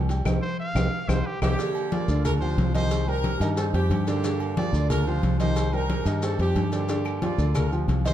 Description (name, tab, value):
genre	latin, salsa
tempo	181 BPM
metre	4/4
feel	straight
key	unclear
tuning	A4 = 440 Hz
part	warm upright piano	accompaniment	0.0-8.1 s	D3 to G5	-30 LUFS	right 2 dB	none
part	fingered electric bass	bass	0.0-8.1 s	C2 to G2	-25 LUFS	equal	none
part	agogo bells and timbales	percussion	0.1-8.1 s	none	-36 LUFS	right 4 dB	none
part	cowbell	percussion	0.1-8.1 s	none	-36 LUFS	left 4 dB	none
part	maracas	percussion	0.1-8.1 s	none	-44 LUFS	left 4 dB	none
part	claves	percussion	0.3-1.5, 7.1-7.7 s	none	-42 LUFS	left 6 dB	none
part	congas	percussion	0.3-8.1 s	none	-30 LUFS	left 1 dB	none
part	brilliant trumpet	melody	0.4-1.6 s	G4 to F5	-32 LUFS	equal	slapback echo
part	clear horn section	melody	1.4-8.1 s	Bb3 to D5	-30 LUFS	right 1 dB	none
room	moderate large studio reverb, RT60 1.2 s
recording	dark, warm production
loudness	-22 LUFS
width	side -11 dB against mid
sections	0.0-1.6 A section; 1.6-8.1 B section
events	trumpet solo 0.0-1.6; drum fill 0.3-1.6; band accent 0.3-1.6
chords	0.3 Cm